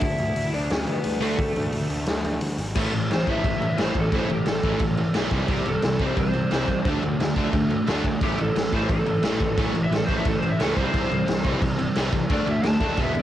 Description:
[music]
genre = punk rock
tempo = 176 BPM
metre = 4/4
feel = straight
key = unclear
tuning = A4 = 439 Hz
[part]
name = lead guitar through a small cranked amp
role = melody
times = 0.0-13.2 s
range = A3 to A5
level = -29 LUFS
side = equal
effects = overdrive, cassette tape, tape echo
[part]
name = fuzz picked electric bass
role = bass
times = 0.0-13.2 s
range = E1 to D2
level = -29 LUFS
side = equal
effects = overdrive
[part]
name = raw garage drum kit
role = drums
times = 0.0-13.2 s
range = crash cymbal, hi-hat, kick drum, snare drum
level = -25 LUFS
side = equal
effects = cassette tape
[part]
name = cranked stack guitar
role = riff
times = 1.2-13.2 s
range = A2 to F#4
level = -28 LUFS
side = left 7 dB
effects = overdrive
[part]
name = sludgy distorted guitar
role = riff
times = 1.2-13.2 s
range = E2 to D4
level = -27 LUFS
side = right 6 dB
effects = overdrive
[sound]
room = little or no reverb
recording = home recording on cassette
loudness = -21 LUFS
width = side -12 dB against mid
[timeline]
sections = 0.0-2.8 A section; 2.8-13.2 B section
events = half time 0.0-2.8; lead electric guitar solo 2.8-13.2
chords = 0.0 D5; 2.8 A5; 5.3 C; 6.9 D5; 8.2 A5; 10.8 C; 12.3 D5

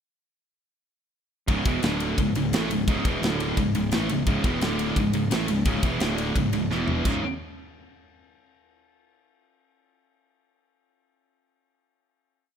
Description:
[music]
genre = heavy metal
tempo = 173 BPM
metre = 4/4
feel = straight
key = C# minor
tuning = A4 = 440 Hz
[part]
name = heavy high-gain guitar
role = riff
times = 1.5-7.2 s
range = C#2 to A3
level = -27 LUFS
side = right 8 dB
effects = distortion
[part]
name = scooped high-gain guitar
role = riff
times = 1.5-7.2 s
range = C#2 to A3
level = -28 LUFS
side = left 10 dB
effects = distortion
[part]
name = fuzz fingered electric bass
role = bass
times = 1.5-7.2 s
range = C#1 to A1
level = -31 LUFS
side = equal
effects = overdrive
[part]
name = tight metal drum kit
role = drums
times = 1.5-7.1 s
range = crash cymbal, kick drum, ride cymbal, snare drum, toms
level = -27 LUFS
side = equal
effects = none
[sound]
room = light reverb, studio ambience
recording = rough home demo mix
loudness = -22 LUFS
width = side -8 dB against mid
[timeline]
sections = 1.5-7.1 riff; 7.1-8.5 final chord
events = drum fill 6.7-7.1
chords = 1.5 C#m; 1.8 D5; 2.2 C#m; 3.2 D5; 3.6 C#m; 4.6 D5; 5.0 C#m; 6.0 D5; 6.4 C#5; 6.7 E5; 7.1 C#5

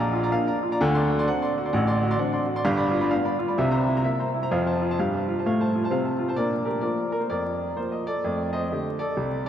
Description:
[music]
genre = jazz, stride piano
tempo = 129 BPM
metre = 4/4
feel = swing 63% on 8ths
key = Bb major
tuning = A4 = 439 Hz
[part]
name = clear grand piano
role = solo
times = 0.0-9.5 s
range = G1 to C6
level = -22 LUFS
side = equal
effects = none
[sound]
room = wet cathedral reverb, RT60 5.2 s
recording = in a vast, echoing space, vinyl crackle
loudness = -22 LUFS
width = side -10 dB against mid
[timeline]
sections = 0.0-6.4 A section; 6.4-9.5 B section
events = grand piano fill 5.0-6.4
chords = 0.0 Bb; 0.8 D7; 2.6 G7; 3.6 C7; 4.5 F; 6.4 Bb; 8.2 F13

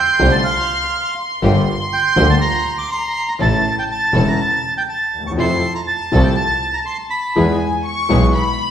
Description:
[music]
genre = tango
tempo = 122 BPM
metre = 4/4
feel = rubato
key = unclear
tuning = A4 = 440 Hz
[part]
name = bandoneon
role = melody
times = 0.0-7.6 s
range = F5 to D6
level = -19 LUFS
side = right 2 dB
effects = none
[part]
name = warm studio violin section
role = second line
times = 0.0-8.7 s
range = G#5 to C#6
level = -22 LUFS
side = left 1 dB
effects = none
[part]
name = warm concert grand piano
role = accompaniment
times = 0.2-8.3 s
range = E1 to G#4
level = -20 LUFS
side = left 2 dB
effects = none
[part]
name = warm chamber string section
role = stabs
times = 0.2-8.3 s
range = A3 to A4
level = -27 LUFS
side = right 2 dB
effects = none
[part]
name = clear double bass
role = bass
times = 0.2-8.3 s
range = E1 to F2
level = -18 LUFS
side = equal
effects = none
[sound]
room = wet large studio reverb, RT60 1.2 s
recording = band playing live in one room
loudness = -15 LUFS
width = side -9 dB against mid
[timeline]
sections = 0.0-8.7 A section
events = none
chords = 0.0 F6; 1.4 Gm7; 3.4 A; 5.4 Fmaj7; 7.4 E

